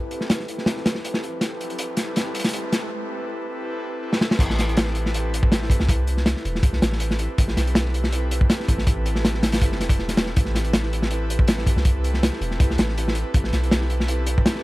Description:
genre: drum and bass, jungle.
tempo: 161 BPM.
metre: 4/4.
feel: straight.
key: A minor.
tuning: A4 = 442 Hz.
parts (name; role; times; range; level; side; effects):
riser; sound effects; 0.4-2.9 s; none; -39 LUFS; right 2 dB; none.
crunchy breakbeat drum kit; drums; 0.1-14.6 s; crash cymbal, hi-hat, kick drum, snare drum; -21 LUFS; equal; none.
long sustained 808-style bass; bass; 4.4-14.4 s; E1 to C2; -24 LUFS; equal; none.
room: small room ambience.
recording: vinyl crackle.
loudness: -20 LUFS.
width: side -19 dB against mid.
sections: 0.0-4.4 A section; 4.4-14.6 B section.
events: build-up 0.0-4.4; drum fill 1.4-2.9, 4.1; drop 4.4-14.6.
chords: none.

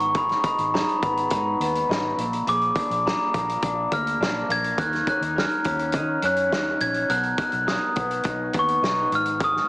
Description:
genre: indie pop, bedroom pop.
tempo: 104 BPM.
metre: 4/4.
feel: straight.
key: G# dorian.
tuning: A4 = 440 Hz.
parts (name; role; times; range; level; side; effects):
glockenspiel with soft plastic mallets; melody; 0.0-9.7 s; A#5 to G#6; -23 LUFS; equal; wide subtle chorus, digital delay.
electric guitar through a small old amp; accompaniment; 0.0-9.7 s; G#2 to A#4; -28 LUFS; equal; wide subtle chorus, warbly pitch drift.
vintage muted fingered electric bass; bass; 0.0-9.6 s; G#1 to D#3; -34 LUFS; equal; none.
loose indie drum kit; drums; 0.0-9.6 s; hi-hat, kick drum, snare drum; -28 LUFS; equal; none.
room: moderate spring reverb, RT60 2.1 s.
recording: heavily compressed radio sound, small speaker sound.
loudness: -21 LUFS.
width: side -20 dB against mid.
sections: 0.0-9.7 A section.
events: none.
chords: 0.0 G#m; 2.2 A#7; 4.8 D#m7; 7.1 Bmaj7; 9.1 G#m.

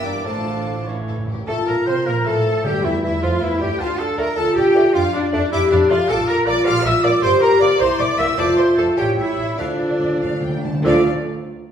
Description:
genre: quick classical-period movement for symphony orchestra.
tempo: 94-107 BPM (dotted quarters).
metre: 6/8.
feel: rubato.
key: D minor.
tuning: A4 = 440 Hz.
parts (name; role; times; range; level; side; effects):
warm studio violin section; melody; 0.0-11.1 s; E4 to D6; -32 LUFS; left 5 dB; none.
mellow clarinet; second line; 0.0-11.0 s; E4 to E5; -29 LUFS; left 1 dB; none.
rich studio violin section; second line; 0.0-11.1 s; E4 to F6; -32 LUFS; left 2 dB; none.
warm oboe; second line; 0.0-11.0 s; D4 to F5; -28 LUFS; equal; none.
clear studio viola section; accompaniment; 0.0-11.1 s; D3 to F5; -26 LUFS; equal; none.
dark bassoon; accompaniment; 0.0-11.0 s; E3 to C4; -29 LUFS; right 1 dB; none.
mellow French horn section; sustained chords; 0.0-11.0 s; F3 to G4; -20 LUFS; left 2 dB; none.
rich symphonic double bass section; bass; 0.0-11.1 s; F1 to C3; -27 LUFS; right 2 dB; none.
warm studio cello section; bass; 0.0-11.1 s; G2 to E5; -23 LUFS; right 3 dB; none.
bright flute section; second line; 0.2-11.1 s; D5 to F6; -26 LUFS; equal; none.
timpani; percussion; 0.9-3.2, 9.6-11.0 s; A2 to D3; -26 LUFS; equal; none.
room: wet recital hall reverb, RT60 1.4 s.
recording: recorded in a church or concert hall.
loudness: -16 LUFS.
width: side -8 dB against mid.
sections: 0.0-1.5 A section; 1.5-10.9 B section.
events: timpani fill 0.9-1.5, 9.6-10.9; slowing down 7.8-10.9.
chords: 0.3 Dm/A; 0.9 A; 1.5 Fadd11; 2.6 A5; 3.8 Dm; 6.1 Bbmaj7; 7.2 Gm; 7.8 C7; 8.4 F; 9.0 A7; 9.6 Dm.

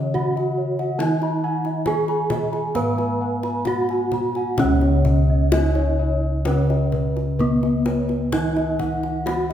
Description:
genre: Javanese gamelan.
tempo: 64-71 BPM.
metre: 4/4.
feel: straight.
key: C# slendro.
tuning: A4 = 441 Hz.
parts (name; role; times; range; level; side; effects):
gamelan-type bronze metallophone; melody; 0.0-9.5 s; B3-40c to B4-40c; -24 LUFS; right 1 dB; none.
gamelan-type bronze metallophone; accompaniment; 0.0-9.5 s; C#3 to B3-40c; -25 LUFS; equal; none.
gamelan-type bossed gongs; arpeggios; 0.0-9.5 s; B4-40c to B5-40c; -29 LUFS; left 2 dB; none.
gamelan-type bronze metallophone; arpeggios; 0.0-9.5 s; B4-40c to B5-40c; -30 LUFS; right 2 dB; none.
gamelan-type bossed gongs; bass; 0.0-9.5 s; C#2 to D#4+40c; -24 LUFS; equal; none.
kendang; percussion; 0.2-9.5 s; none; -30 LUFS; left 2 dB; none.
room: wet recital hall reverb, RT60 1.6 s.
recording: recorded in a church or concert hall.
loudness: -19 LUFS.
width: side -10 dB against mid.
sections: 0.0-4.6 A section; 4.6-9.5 B section.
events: none.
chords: none.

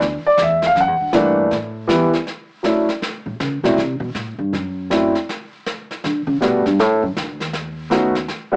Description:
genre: jazz piano trio.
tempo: 159 BPM.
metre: 4/4.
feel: swing 64% on 8ths.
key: D major.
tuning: A4 = 442 Hz.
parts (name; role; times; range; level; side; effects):
upright bass; bass; 0.0-8.3 s; D2 to D3; -25 LUFS; equal; tube saturation.
jazz brush drum kit; drums; 0.0-8.6 s; brushed snare drum, hi-hat, kick drum, snare drum; -30 LUFS; equal; none.
clear grand piano; melody; 0.3-8.6 s; E3 to F#5; -18 LUFS; equal; none.
room: light reverb.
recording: worn, warbling old tape, cassette tape, warbly pitch drift, small speaker sound.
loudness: -19 LUFS.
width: mono.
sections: 0.0-2.3 A section; 2.3-8.6 A section.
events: grand piano solo 0.0-2.3; upright bass solo 2.3-8.6.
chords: 0.0 G5 (rootless); 0.8 F#7alt; 1.5 A5; 2.3 Dmaj7; 3.8 D7 (rootless); 5.3 G; 6.8 D; 7.5 B7.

